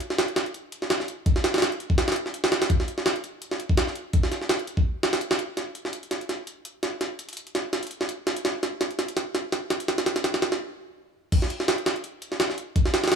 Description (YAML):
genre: drum and bass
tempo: 167 BPM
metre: 4/4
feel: swing 55% on 16ths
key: none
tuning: none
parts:
  - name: jungle sampler-style drum kit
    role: drums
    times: 0.0-13.2 s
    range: crash cymbal, hi-hat, kick drum, snare drum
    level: -24 LUFS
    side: equal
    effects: none
room: light reverb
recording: none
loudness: -24 LUFS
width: side -6 dB against mid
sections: 0.0-11.3 A section; 11.3-13.2 B section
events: build-up 0.0-11.3; drum fill 5.6-10.6; stop 10.6-11.3; drop 11.3-13.2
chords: none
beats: 0.18 0.54 0.90 | 1.26 1.62 1.98 2.34 | 2.70 3.06 3.42 3.78 | 4.14 4.50 4.86 5.21 | 5.57 5.93 6.29 6.65 | 7.01 7.37 7.73 8.09 | 8.45 8.81 9.17 9.53 | 9.89 10.24 10.60 10.96 | 11.32 11.68 12.04 12.40 | 12.76 13.12